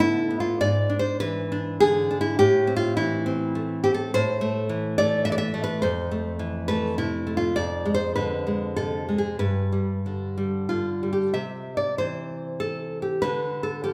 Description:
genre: romantic piece for solo classical guitar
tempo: 90-107 BPM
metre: 3/4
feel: rubato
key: A minor, C major from 4.1 s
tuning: A4 = 438 Hz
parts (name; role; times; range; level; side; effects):
- nylon-string guitar; solo; 0.0-13.9 s; F2 to E5; -25 LUFS; equal; none
room: wet recital hall reverb, RT60 1.7 s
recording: recorded in a church or concert hall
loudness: -25 LUFS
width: mono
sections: 0.0-11.4 A section; 11.4-13.9 B section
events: none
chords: 0.0 G13/A (rootless); 0.6 E7/G#; 2.4 Am; 5.8 Fmaj7; 7.6 Dm7b5/F; 9.4 G; 11.4 C; 13.2 G5/D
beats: 0.01 | 0.60 1.20 1.81 | 2.40 2.98 3.56 | 4.13 4.70 5.26 | 5.82 6.40 6.98 | 7.57 8.16 8.78 | 9.41 10.06 10.70 | 11.35 11.99 12.60 | 13.22 13.84

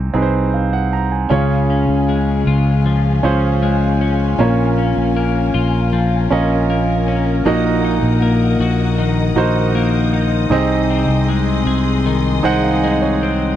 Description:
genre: pop ballad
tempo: 78 BPM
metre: 4/4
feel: straight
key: Db major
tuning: A4 = 440 Hz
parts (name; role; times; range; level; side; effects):
- clear concert grand piano; accompaniment; 0.0-13.6 s; Bb2 to Bb5; -18 LUFS; right 4 dB; none
- fingered electric bass; bass; 0.0-13.6 s; Bb1 to Db2; -17 LUFS; equal; none
- rich studio string section; sustained chords; 1.3-13.6 s; Db4 to Eb6; -26 LUFS; left 4 dB; none
- twelve-string electric guitar; arpeggios; 1.3-13.6 s; Bb2 to Ab4; -20 LUFS; left 7 dB; slapback echo
room: little or no reverb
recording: dry, close 1970s-style studio recording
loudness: -14 LUFS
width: side -11 dB against mid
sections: 0.0-13.6 A section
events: grand piano fill 12.1-13.6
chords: 0.0 Ab/C; 1.3 Db; 4.4 Bbm; 7.5 Ebm/Bb; 10.5 Ab/C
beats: 0.54 | 1.31 2.09 2.86 3.63 | 4.40 5.17 5.93 6.70 | 7.46 8.23 8.99 9.75 | 10.51 11.28 12.05 12.83

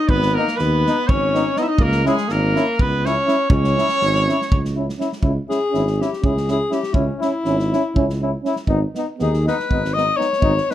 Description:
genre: balkan folk, Balkan brass band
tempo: 244 BPM (eighths)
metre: 7/8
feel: straight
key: C# dorian sharp4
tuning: A4 = 439 Hz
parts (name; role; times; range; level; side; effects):
- clear trumpet; melody; 0.0-4.7 s; G#4 to E5; -21 LUFS; right 2 dB; none
- clear alto saxophone; second line; 0.0-10.7 s; G#3 to D#5; -22 LUFS; left 4 dB; none
- mellow tuba; bass; 0.1-10.6 s; G#1 to D#2; -21 LUFS; right 1 dB; none
- natural country drum kit; percussion; 0.1-10.7 s; kick drum, snare drum; -23 LUFS; equal; none
- bright trombone; accompaniment; 0.4-10.7 s; D#4 to E4; -26 LUFS; left 5 dB; none
- warm euphonium; accompaniment; 0.4-10.7 s; B3 to C#4; -25 LUFS; right 4 dB; none
room: light reverb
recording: dark, warm production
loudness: -16 LUFS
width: side -12 dB against mid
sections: 0.0-5.2 A section; 5.2-10.7 B section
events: alto saxophone solo 5.2-10.7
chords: 0.0 G#m; 1.8 C#m; 8.7 G#m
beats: | 0.08 0.32 0.56 0.81 1.05 1.29 1.54 | 1.78 2.03 2.27 2.52 2.76 3.00 3.25 | 3.49 3.74 3.98 4.23 4.47 4.72 4.97 | 5.21 5.46 5.71 5.95 6.20 6.45 6.69 | 6.94 7.19 7.44 7.68 7.93 8.18 8.43 | 8.68 8.92 9.17 9.42 9.66 9.91 10.16 | 10.41 10.66

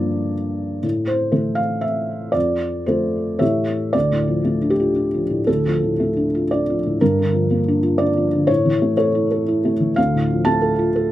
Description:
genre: neoclassical minimalist piano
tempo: 119 BPM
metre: 3/4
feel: rubato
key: D harmonic minor from 3.9 s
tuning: A4 = 440 Hz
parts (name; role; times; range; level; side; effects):
- felt-muted upright piano; solo; 0.0-11.1 s; D2 to A5; -17 LUFS; equal; none
room: light reverb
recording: recorded outdoors, with no room sound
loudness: -17 LUFS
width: side -14 dB against mid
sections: 0.0-3.9 A section; 3.9-11.1 B section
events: none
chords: 0.0 Gm7; 0.8 Am; 2.3 F; 3.4 A7; 3.9 Dm; 7.0 Gm7; 8.5 A; 10.0 Dm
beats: 0.33 | 0.83 1.34 1.84 | 2.35 2.87 3.41 | 3.94 4.46 4.96 | 5.47 5.99 6.50 | 7.00 7.50 8.00 | 8.49 8.98 9.47 | 9.97 10.47 10.96

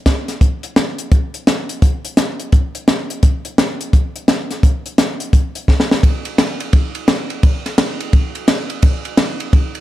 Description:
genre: rock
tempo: 171 BPM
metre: 4/4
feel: swing 63% on 8ths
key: none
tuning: none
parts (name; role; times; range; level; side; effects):
- compact cocktail drum kit; drums; 0.1-9.8 s; hi-hat, kick drum, ride cymbal, snare drum; -14 LUFS; equal; none
room: light reverb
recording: none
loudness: -14 LUFS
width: side -15 dB against mid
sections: 0.0-6.0 A section; 6.0-9.8 B section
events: drum fill 5.7-6.0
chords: none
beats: 0.06 | 0.41 0.77 1.12 1.47 | 1.82 2.17 2.52 2.88 | 3.23 3.58 3.93 4.28 | 4.63 4.99 5.34 5.69 | 6.04 6.39 6.74 7.09 | 7.44 7.79 8.14 8.49 | 8.84 9.19 9.54

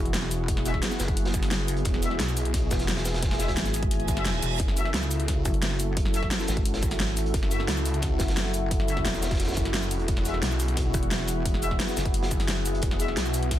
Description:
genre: dark technical drum and bass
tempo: 175 BPM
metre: 4/4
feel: straight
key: unclear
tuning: A4 = 443 Hz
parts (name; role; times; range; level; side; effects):
- dark analog pad; sustained chords; 0.0-13.6 s; E4 to A4; -34 LUFS; left 1 dB; chorus, sidechain pumping
- pulsing pluck wobble bass; bass; 0.0-12.8 s; E1 to G#1; -29 LUFS; equal; chorus
- warbly tape-like pad; texture; 0.0-13.6 s; B3 to G#5; -34 LUFS; equal; chorus, built-in reverb, phaser, sidechain pumping
- crunchy breakbeat drum kit; drums; 0.1-13.6 s; hi-hat, snare drum; -37 LUFS; equal; high-pass filter on hats, high-pass filter on snare, high-pass filter on room
- dubstep drum kit; drums; 0.1-13.6 s; hi-hat, shaker, snare drum; -31 LUFS; equal; none
- electronic kick drum; drums; 0.5-13.6 s; none; -28 LUFS; equal; none
- mellow brass ensemble; stabs; 0.7-13.1 s; G#3 to E5; -35 LUFS; left 3 dB; digital delay
- snarling distorted saw bass; bass; 1.9-13.6 s; E1 to C#2; -28 LUFS; equal; distortion
- reverse cymbal; sound effects; 4.0-4.6 s; none; -34 LUFS; right 7 dB; none
room: little or no reverb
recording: dense, heavily limited modern master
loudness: -24 LUFS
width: side -12 dB against mid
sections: 0.0-13.6 A section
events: reverse cymbal 4.0-4.6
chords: 0.0 Eadd9; 4.6 F#m7; 10.1 Eadd9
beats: 0.14 | 0.48 0.83 1.17 1.51 | 1.85 2.20 2.54 2.88 | 3.23 3.57 3.91 4.25 | 4.60 4.94 5.28 5.63 | 5.97 6.31 6.66 7.00 | 7.34 7.68 8.03 8.37 | 8.71 9.05 9.40 9.74 | 10.08 10.43 10.77 11.11 | 11.46 11.80 12.14 12.48 | 12.83 13.17 13.51

